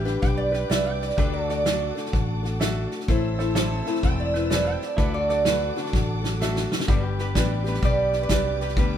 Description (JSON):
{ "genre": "honky-tonk and classic country", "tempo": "126 BPM", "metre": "4/4", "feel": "swing 65% on 8ths", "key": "G major", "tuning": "A4 = 441 Hz", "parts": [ { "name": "bright grand piano", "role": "accompaniment", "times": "0.0-8.7 s", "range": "D4 to E5", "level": "-34 LUFS", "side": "right 3 dB", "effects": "none" }, { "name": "picked acoustic archtop guitar", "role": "accompaniment", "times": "0.0-9.0 s", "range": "G2 to B4", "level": "-30 LUFS", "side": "left 5 dB", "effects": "none" }, { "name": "pedal steel guitar", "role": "sustained chords", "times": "0.0-9.0 s", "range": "C4 to D5", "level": "-37 LUFS", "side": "right 1 dB", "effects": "none" }, { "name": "warm symphonic violin section", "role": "sustained chords", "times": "0.0-9.0 s", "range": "C4 to E6", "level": "-37 LUFS", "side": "left 1 dB", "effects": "none" }, { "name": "fingered electric bass", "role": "bass", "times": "0.0-9.0 s", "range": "E1 to D2", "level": "-27 LUFS", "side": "equal", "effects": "none" }, { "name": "natural country drum kit", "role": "drums", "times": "0.1-8.9 s", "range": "hi-hat, kick drum, snare drum", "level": "-25 LUFS", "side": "equal", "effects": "none" }, { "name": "lap resonator guitar", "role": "melody", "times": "0.2-9.0 s", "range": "D4 to G5", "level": "-26 LUFS", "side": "right 3 dB", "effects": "none" } ], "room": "light reverb", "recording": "minimal, uncompressed stereo recording", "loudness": "-21 LUFS", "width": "side -10 dB against mid", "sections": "0.0-6.9 A section; 6.9-9.0 B section", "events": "resonator guitar played with a steel bar solo 0.0-6.9; drum fill 5.9-6.9", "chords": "0.0 G; 1.2 D; 3.1 Am; 5.0 D; 6.9 G" }